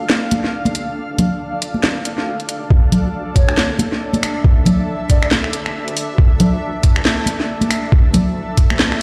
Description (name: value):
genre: deep dubstep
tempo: 138 BPM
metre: 4/4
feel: swing 59% on 16ths, half-time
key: D minor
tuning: A4 = 441 Hz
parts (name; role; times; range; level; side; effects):
- granular cloud pad; sustained chords; 0.0-9.0 s; D4 to F5; -27 LUFS; equal; built-in reverb
- deep soft wobble bass; bass; 0.0-9.0 s; F1 to D2; -37 LUFS; equal; none
- garage drum kit; drums; 0.1-9.0 s; finger snaps, handclaps, hi-hat, snare drum; -21 LUFS; equal; none
- congas; percussion; 0.3-8.9 s; none; -21 LUFS; equal; dub echo
- electronic kick drum; drums; 2.7-8.7 s; none; -14 LUFS; equal; none
- breathy mellow low ney; melody; 3.4-5.3 s; C#5 to D5; -31 LUFS; equal; vintage 12-bit sampler grit, low-pass filter, dub echo
room: moderate lush hall reverb, RT60 1.9 s, digital ambience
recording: played on a big sound system in a bare room, large studio reverb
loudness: -17 LUFS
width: mono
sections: 0.0-9.0 A section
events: build-up 0.0-9.0; filter sweep on ney 0.0-9.0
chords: 0.0 Dmadd9